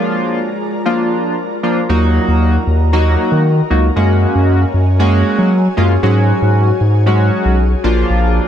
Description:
pop; 116 BPM; 4/4; straight; Eb minor; A4 = 440 Hz
chorused polysynth; accompaniment; 0.0-8.5 s; F3 to Gb4; -16 LUFS; right 1 dB
ethereal airy pad; sustained chords; 0.0-8.5 s; F4 to Bb5; -21 LUFS; left 2 dB; ensemble chorus, built-in reverb
saturated sub bass; bass; 1.9-8.4 s; Bb1 to Gb3; -12 LUFS; equal
light reverb; -11 LUFS; side -9 dB against mid
0.0-8.5 A section
0.0 Bb; 1.9 Ebm; 4.0 Gbadd9; 6.0 Dbsus4/Ab; 7.8 Bb

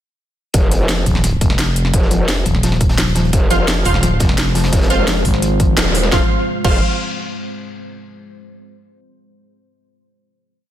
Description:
dark technical drum and bass; 172 BPM; 4/4; straight; F minor; A4 = 440 Hz
soft round pluck; arpeggios; 0.5-6.8 s; F3; -23 LUFS; left 2 dB; chorus, sidechain pumping, digital delay
growl bass; bass; 0.5-6.8 s; Eb1 to F1; -18 LUFS; equal; chorus, overdrive, sidechain pumping
crunchy breakbeat drum kit; drums; 0.5-6.1 s; hi-hat, snare drum; -30 LUFS; equal; high-pass filter on hats, small room ambience, high-pass filter on snare, high-pass filter on room
drum and bass drum kit; drums; 0.5-6.7 s; crash cymbal, hi-hat, snare drum; -21 LUFS; equal; small room ambience
electronic kick drum; drums; 0.5-6.7 s; -17 LUFS; equal; small room ambience
growling FM bass; bass; 1.1-5.8 s; Eb1 to Ab1; -17 LUFS; equal
deep dark ambient pad; sustained chords; 4.2-6.3 s; Ab3 to C5; -24 LUFS; equal; chorus, built-in reverb, sidechain pumping
orchestra-hit-like synth stab; stabs; 3.5-6.8 s; F4 to F5; -22 LUFS; right 2 dB; built-in reverb, digital delay
light reverb; dense, heavily limited modern master; -13 LUFS; side -12 dB against mid
0.5-6.1 drop; 6.1-7.5 final chord
drop 0.5-6.1; band accent 5.8
0.5 Fm

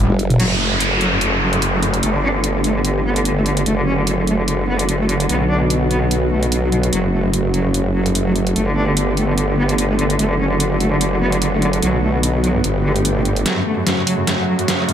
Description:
heavy wobble dubstep; 147 BPM; 4/4; swing 54% on 16ths, half-time; F# phrygian; A4 = 439 Hz
supersaw pad; sustained chords; 0.0-14.9 s; C#3 to E5; -21 LUFS; right 1 dB; low-pass filter
formant-sweep wobble bass; bass; 0.1-13.4 s; F#1 to B1; -20 LUFS; equal; chorus, overdrive
dubstep drum kit; drums; 0.1-14.9 s; crash cymbal, hi-hat, snare drum, toms; -22 LUFS; equal; overdrive
rich cello; melody; 0.4-14.9 s; F#2 to D4; -20 LUFS; equal; tape echo
downlifter and riser; sound effects; 0.4-3.7, 14.5-14.9 s; -22 LUFS; equal
moderate lush hall reverb, RT60 1.8 s, digital ambience; dark, warm production; -15 LUFS; side -9 dB against mid
0.4-13.5 A section; 13.5-14.9 B section
drum fill 0.0-0.4, 13.5-14.9; filter sweep on supersaw synth 0.4-13.5; build-up 13.5-14.9
0.4 F#m; 2.0 Gadd9; 3.7 D/F#; 5.3 Bm; 6.9 F#m; 8.6 Gadd9; 10.2 D/F#; 11.8 Bm; 12.6 Gadd9; 13.5 F#m

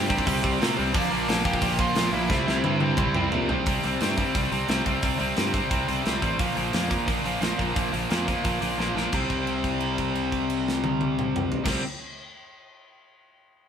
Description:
punk rock; 176 BPM; 4/4; straight; C mixolydian; A4 = 442 Hz
nasal lead guitar with a parked wah; melody; 0.0-3.3 s; D4 to A5; -30 LUFS; right 1 dB; overdrive
cranked stack guitar; riff; 0.0-11.8 s; Bb2 to C4; -28 LUFS; left 7 dB; overdrive
distorted electric guitar; riff; 0.0-11.8 s; Bb2 to C4; -28 LUFS; right 6 dB; overdrive
modern bright picked electric bass; bass; 0.0-11.8 s; A1 to Bb2; -31 LUFS; equal
tight metal drum kit; drums; 0.1-11.7 s; crash cymbal, hi-hat, kick drum, snare drum, toms; -28 LUFS; equal
moderate stone room reverb, RT60 1.0 s; band playing live in one room; -22 LUFS; side -8 dB against mid
0.0-3.7 A section; 3.7-9.1 B section; 9.1-11.9 C section
drum fill 2.3-3.7, 8.8-9.1; held note 9.1-11.7
0.0 C5; 0.9 Bb; 2.3 C; 3.7 C5; 6.4 Bb5; 9.1 C5

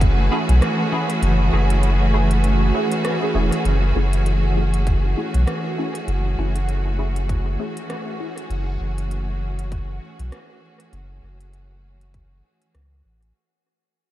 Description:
ambient dub; 99 BPM; 4/4; swing 57% on 16ths; F# minor; A4 = 440 Hz
bright studio string section; sustained chords; 0.0-13.4 s; E3 to G#4; -24 LUFS; right 1 dB
warm sub bass; bass; 0.0-13.3 s; E1 to C#2; -19 LUFS; equal
electronic kick drum; drums; 0.0-0.2, 4.9-12.3 s; -23 LUFS; equal; overdrive
organic electronic drum kit; drums; 0.0-13.3 s; hi-hat, rim click; -34 LUFS; equal; overdrive, dub echo
bubbling stepped-filter texture; texture; 0.0-13.4 s; F#4 to B4; -35 LUFS; right 1 dB; chorus, built-in reverb
filtered dub chord stab; stabs; 0.3-8.3 s; A3 to G#4; -28 LUFS; equal; phaser, ensemble chorus, dub echo
moderate huge ambient reverb, RT60 7.2 s; dreamy mix soaked in reverb; -18 LUFS; side -14 dB against mid
0.0-3.7 A section; 3.7-13.4 B section
kick drops out 1.2-3.7; fade-out 3.7-13.4
0.0 F#m9

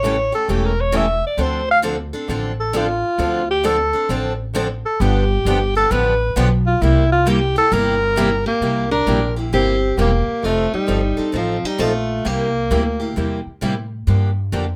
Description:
acoustic string swing (jazz manouche); 133 BPM; 4/4; swing 65% on 8ths; C mixolydian; A4 = 440 Hz
breathy alto saxophone; melody; 0.0-13.2 s; F3 to F5; -21 LUFS; equal
picked acoustic archtop guitar; accompaniment; 0.0-14.6 s; C3 to A4; -28 LUFS; equal
picked steel-string acoustic guitar; accompaniment; 0.0-14.6 s; C3 to A4; -27 LUFS; equal
upright bass; bass; 0.0-14.8 s; E1 to A2; -23 LUFS; equal
picked steel-string acoustic guitar; second line; 8.5-13.2 s; C4 to Bb4; -26 LUFS; equal
light reverb; -18 LUFS; mono
0.0-8.6 A section; 8.6-14.8 B section
alto saxophone solo 0.0-8.6
0.0 A7; 1.4 Dm7; 5.0 G7; 6.8 C7; 10.4 F7; 12.2 C7; 14.1 Gm7

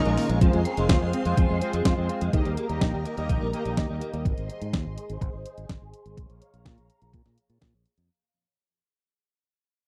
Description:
italo disco; 125 BPM; 4/4; straight; F minor; A4 = 440 Hz
phased string machine; sustained chords; 0.0-8.1 s; G4 to Db6; -37 LUFS; equal; ensemble chorus, phaser
direct-recorded clean electric guitar; arpeggios; 0.0-4.2 s; Eb3 to F4; -36 LUFS; equal; ensemble chorus, tape echo
analog synth brass; stabs; 0.0-4.2 s; Bb2 to Eb5; -33 LUFS; equal; chorus, tremolo, tape echo
fingered electric bass; bass; 0.0-8.1 s; F1 to Bb2; -30 LUFS; equal
clean 12-bit digital drum machine; drums; 0.1-8.1 s; hi-hat, snare drum, toms; -32 LUFS; equal
electronic kick drum; drums; 0.4-7.7 s; -27 LUFS; equal
little or no reverb; dry, close 1970s-style studio recording; -26 LUFS; mono
0.4-8.1 A section
fade-out 0.4-8.1; filter sweep on string machine 0.4-8.1
0.4 Fm; 2.3 Eb; 4.3 Ab; 6.2 Bbm7

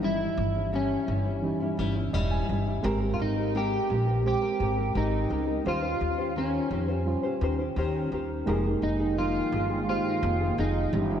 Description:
indie pop; 85 BPM; 4/4; straight; F minor; A4 = 439 Hz
electric guitar at the edge of break-up; melody; 0.0-11.2 s; Db4 to G4; -30 LUFS; equal; analog chorus, diffuse ambient delay
nylon-string guitar; accompaniment; 0.0-11.2 s; G2 to C5; -31 LUFS; left 3 dB; lush chorus, warbly pitch drift
reed electric piano; accompaniment; 0.0-11.2 s; Eb3 to Ab5; -33 LUFS; right 4 dB
upright bass; bass; 0.0-11.2 s; Fb1 to F2; -30 LUFS; equal
hollow soft pad; sustained chords; 8.8-11.2 s; Db3 to G5; -36 LUFS; right 1 dB; chorus
wet lush hall reverb, RT60 3.1 s; dreamy mix soaked in reverb, cassette tape; -25 LUFS; side -9 dB against mid
0.0-11.2 A section
reed electric piano fill 1.8-2.8
0.0 Eb7b9/G; 2.8 Abmaj9; 5.7 Eb13; 8.5 Fm11

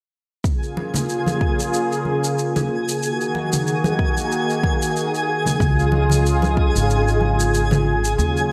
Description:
organic downtempo; 93 BPM; 4/4; swing 56% on 16ths; Bb minor; A4 = 442 Hz
warm analog pad; sustained chords; 0.4-8.5 s; Db3 to Ab4; -24 LUFS; equal; chorus, tremolo, sidechain pumping
electronic kick drum; drums; 0.4-6.7 s; -23 LUFS; equal; studio reverb
shaker; drums; 0.4-8.5 s; -32 LUFS; equal; overdrive, studio reverb
twinkling granular texture; texture; 0.6-8.5 s; Ab4 to Ab5; -28 LUFS; equal; built-in reverb, lush chorus
congas; percussion; 0.8-7.8 s; -27 LUFS; equal
upright bass; bass; 5.6-8.5 s; Ab1 to Eb2; -22 LUFS; equal; sidechain pumping
wet plate reverb, RT60 1.5 s, studio reverb; bright 1980s-style digital production; -20 LUFS; mono
0.4-8.5 A section
0.4 Bbm7; 3.0 Gb69; 5.6 Db

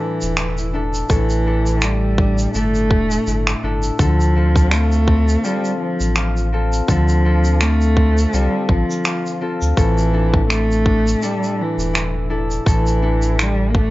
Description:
folktronica; 83 BPM; 4/4; swing 56% on 16ths; D minor; A4 = 440 Hz
dark cello; melody; 0.0-13.9 s; E3 to Bb3; -20 LUFS; equal; digital delay
concert harp; arpeggios; 0.0-13.9 s; A2 to A4; -23 LUFS; left 3 dB; digital delay
warm sub bass; bass; 0.2-13.9 s; E1 to D2; -18 LUFS; equal
shaker and finger snaps; drums; 0.2-13.6 s; -24 LUFS; right 1 dB
electronic kick drum; drums; 1.1-13.9 s; -17 LUFS; equal
little or no reverb; nothing above 7.5 kHz; -15 LUFS; side -18 dB against mid
0.0-13.9 A section
0.0 A7sus4; 4.0 Dm7; 9.8 Asus4

